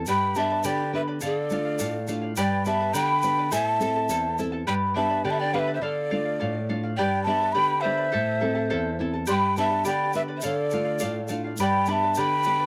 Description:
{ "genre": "andean folk, Andean ensemble", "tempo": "104 BPM", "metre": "2/4", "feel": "straight", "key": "unclear", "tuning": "A4 = 439 Hz", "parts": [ { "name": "charango", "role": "accompaniment", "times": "0.0-12.7 s", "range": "E4 to B5", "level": "-33 LUFS", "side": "equal", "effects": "none" }, { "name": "nylon-string guitar", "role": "accompaniment", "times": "0.0-12.7 s", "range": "E2 to A4", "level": "-31 LUFS", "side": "equal", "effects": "none" }, { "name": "breathy mellow quena", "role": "melody", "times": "0.1-12.7 s", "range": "D5 to C6", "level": "-28 LUFS", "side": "equal", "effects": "none" }, { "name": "breathy pan flute", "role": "second line", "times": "0.1-12.7 s", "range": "A4 to G5", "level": "-33 LUFS", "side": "equal", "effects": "none" }, { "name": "egg shaker", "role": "percussion", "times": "0.1-4.5, 9.3-12.6 s", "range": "none", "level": "-41 LUFS", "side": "equal", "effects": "none" } ], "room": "moderate booth ambience, RT60 0.3 s", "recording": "dry, close 1970s-style studio recording", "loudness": "-25 LUFS", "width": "mono", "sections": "0.0-4.7 A section; 4.7-12.7 A section", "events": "none", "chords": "0.1 G; 1.2 Dm; 2.4 G; 3.5 Am; 4.7 G; 5.8 Dm; 7.0 G; 8.1 Am; 9.3 G; 10.4 Dm; 11.6 G" }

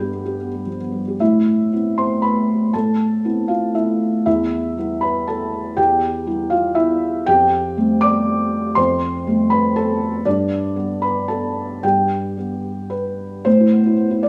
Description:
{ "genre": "neoclassical minimalist piano", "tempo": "108-123 BPM", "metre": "3/4", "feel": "rubato", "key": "A minor", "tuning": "A4 = 440 Hz", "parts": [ { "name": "felt-muted upright piano", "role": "solo", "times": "0.0-14.3 s", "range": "E2 to G6", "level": "-19 LUFS", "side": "equal", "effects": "none" } ], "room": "wet stone room reverb, RT60 0.9 s", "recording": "band playing live in one room, studio reverb", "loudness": "-19 LUFS", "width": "mono", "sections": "0.0-1.2 A section; 1.2-13.5 B section", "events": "none", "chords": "0.0 G; 1.2 Amadd9; 4.3 Em; 7.3 Fadd9; 10.3 G; 13.5 Amadd9" }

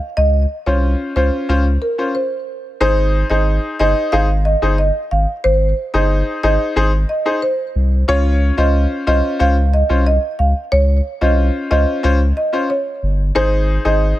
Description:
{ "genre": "dancehall", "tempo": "91 BPM", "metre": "4/4", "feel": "straight", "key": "Ab major", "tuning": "A4 = 440 Hz", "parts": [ { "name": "marimba with medium mallets", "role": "melody", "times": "0.2-14.0 s", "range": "Bb4 to F5", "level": "-19 LUFS", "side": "right 2 dB", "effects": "none" }, { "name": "saturated sub bass", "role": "bass", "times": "0.2-14.1 s", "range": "G1 to Db2", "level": "-15 LUFS", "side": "equal", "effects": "none" }, { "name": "bright grand piano", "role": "accompaniment", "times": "0.7-14.2 s", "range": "Db4 to Db5", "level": "-19 LUFS", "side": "left 2 dB", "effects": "none" } ], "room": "small room ambience", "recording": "none", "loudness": "-14 LUFS", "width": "side -14 dB against mid", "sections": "0.0-2.8 A section; 2.8-14.2 B section", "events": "stop 2.1-2.8", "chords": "0.0 Dbmaj7; 2.8 Ab; 8.1 Dbmaj7; 13.4 Ab" }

